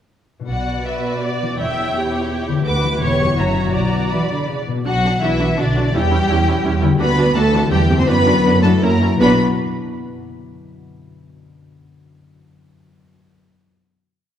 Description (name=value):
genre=classical, dramatic, fast romantic movement for symphony orchestra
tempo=155-172 BPM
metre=3/4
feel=rubato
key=B minor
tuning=A4 = 438 Hz
part: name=concert harp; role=arpeggios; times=0.4-9.4 s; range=F#2 to F#5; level=-22 LUFS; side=left 4 dB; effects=none
part: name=warm symphonic violin section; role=melody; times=0.5-9.4 s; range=D5 to D6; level=-23 LUFS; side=left 3 dB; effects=none
part: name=rich symphonic violin section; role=second line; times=0.5-9.4 s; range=D4 to E5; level=-24 LUFS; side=left 1 dB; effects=none
part: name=dark symphonic cello section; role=bass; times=0.5-9.4 s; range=D2 to C4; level=-21 LUFS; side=right 2 dB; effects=none
part: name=rich symphonic double bass section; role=bass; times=0.5-9.4 s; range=E1 to F#2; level=-21 LUFS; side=right 3 dB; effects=none
part: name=rich symphonic viola section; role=accompaniment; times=0.9-9.4 s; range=C4 to E5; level=-24 LUFS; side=right 2 dB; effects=none
room=wet concert hall reverb, RT60 2.0 s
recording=none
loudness=-15 LUFS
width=side -10 dB against mid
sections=0.5-4.9 A section; 4.9-9.2 A section; 9.2-10.3 final chord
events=none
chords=0.5 Bm; 1.6 C#dim/E; 2.7 Bm/D; 3.0 C#m7b5/E; 3.4 F#7; 3.7 Bm; 6.0 C#dim/E; 7.0 Bm/D; 7.7 C/E; 8.1 Bm/F#; 8.8 F#7; 9.2 Bm